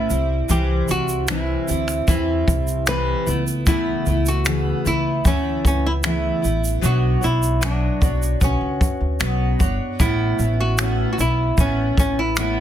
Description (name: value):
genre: acoustic pop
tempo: 76 BPM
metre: 4/4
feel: straight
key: A mixolydian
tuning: A4 = 441 Hz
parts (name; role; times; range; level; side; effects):
- flamenco guitar; melody; 0.0-12.6 s; C#4 to B4; -24 LUFS; right 1 dB; none
- picked steel-string acoustic guitar; accompaniment; 0.0-12.6 s; A2 to C#5; -24 LUFS; left 1 dB; double-tracked left and right
- upright bass; bass; 0.1-12.6 s; G1 to E2; -22 LUFS; equal; none
- jazz brush drum kit; drums; 0.1-12.6 s; finger snaps, kick drum, shaker; -21 LUFS; equal; soft clipping on snare
room: light reverb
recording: dense, heavily limited modern master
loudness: -18 LUFS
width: side -11 dB against mid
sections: 0.0-12.6 A section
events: none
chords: 0.1 C; 3.3 Aadd9/C#; 6.8 Bmadd9; 10.0 Aadd9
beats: | 0.50 1.29 2.08 2.88 | 3.67 4.46 5.25 6.04 | 6.83 7.62 8.41 9.21 | 10.00 10.79 11.58 12.37